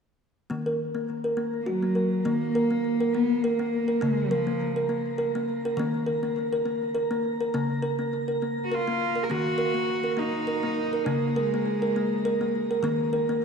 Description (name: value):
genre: world meditative, meditative tuned percussion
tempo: 102 BPM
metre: 3/4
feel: swing 55% on 16ths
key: Eb minor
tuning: A4 = 440 Hz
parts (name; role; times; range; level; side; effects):
- kalimba; arpeggios; 0.5-13.4 s; Db3 to Bb4; -26 LUFS; equal; shimmer reverb, ping-pong delay
- rich cello; melody; 1.6-4.9, 8.6-12.5 s; F3 to Bb4; -28 LUFS; equal; shimmer reverb, ping-pong delay
room: wet echo chamber reverb, RT60 1.7 s, small room reverb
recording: dark, warm production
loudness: -24 LUFS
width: side -6 dB against mid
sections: 0.5-2.3 A section; 2.3-13.4 B section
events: none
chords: 0.5 Ebm; 2.3 Eb5; 4.0 Db; 5.8 Eb5; 7.5 Db6; 9.3 Ebm; 11.1 Db5; 12.8 Eb5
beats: | 0.51 1.09 1.68 | 2.26 2.85 3.43 | 4.02 4.60 5.19 | 5.77 6.36 6.95 | 7.53 8.12 8.71 | 9.30 9.88 10.47 | 11.06 11.65 12.24 | 12.83 13.42